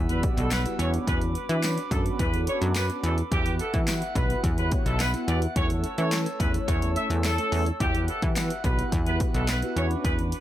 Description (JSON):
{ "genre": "dance-pop", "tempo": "107 BPM", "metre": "4/4", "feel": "straight", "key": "E dorian", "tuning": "A4 = 440 Hz", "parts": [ { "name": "glass harmonica", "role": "sustained chords", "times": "0.0-10.4 s", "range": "G3 to F#6", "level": "-36 LUFS", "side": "equal", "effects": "sidechain pumping" }, { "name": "plucky analog bass", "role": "bass", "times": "0.0-10.3 s", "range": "B1 to E3", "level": "-26 LUFS", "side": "equal", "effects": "sidechain pumping" }, { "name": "impact", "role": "sound effects", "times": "0.0-1.1 s", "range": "none", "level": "barely audible", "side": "none", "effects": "none" }, { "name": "clear horn section", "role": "melody", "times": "0.1-10.1 s", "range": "G4 to E5", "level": "-32 LUFS", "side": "equal", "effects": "analog delay" }, { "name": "mellow synth brass", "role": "accompaniment", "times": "0.1-10.3 s", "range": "A3 to D5", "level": "-33 LUFS", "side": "right 1 dB", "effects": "chorus, sidechain pumping, analog delay" }, { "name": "punchy analog drum machine", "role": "drums", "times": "0.1-10.4 s", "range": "handclaps, hi-hat, kick drum, snare drum", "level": "-28 LUFS", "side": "equal", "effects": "none" }, { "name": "tambourine", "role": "percussion", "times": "0.5-9.6 s", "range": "none", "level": "-40 LUFS", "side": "left 12 dB", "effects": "analog delay" } ], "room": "little or no reverb", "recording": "echo-heavy mix", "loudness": "-23 LUFS", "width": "side -13 dB against mid", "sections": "0.0-10.4 A section", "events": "impact 0.0-1.1", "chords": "0.0 Emadd9; 0.8 Bmadd9/E; 3.3 Emadd9; 5.6 A/E; 7.8 Emadd9; 9.8 Bmadd9/E", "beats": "0.51 | 1.07 1.63 2.19 2.76 | 3.32 3.88 4.44 5.00 | 5.56 6.12 6.68 7.24 | 7.80 8.36 8.92 9.48 | 10.05" }